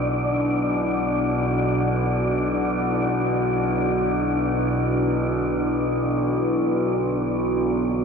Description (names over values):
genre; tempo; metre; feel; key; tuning
dark ambient drone; free time; none; none; B minor; A4 = 440 Hz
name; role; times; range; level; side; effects
deep dark ambient pad; sustained chords; 0.0-8.0 s; D4 to B4; -25 LUFS; equal; chorus, built-in reverb
tubular bells; arpeggios; 0.0-7.8 s; none; barely audible; none; none
overtone-sweeping drone; drone; 0.0-8.0 s; B1 to B2; -23 LUFS; equal; chorus, built-in reverb
wind-like tuned noise texture; texture; 0.0-7.8 s; D4 to D5; -28 LUFS; left 1 dB; built-in reverb
room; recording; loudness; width
wet huge ambient reverb, RT60 7.7 s; cassette tape; -20 LUFS; side -5 dB against mid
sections
0.0-7.7 A section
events
none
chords
0.0 Bm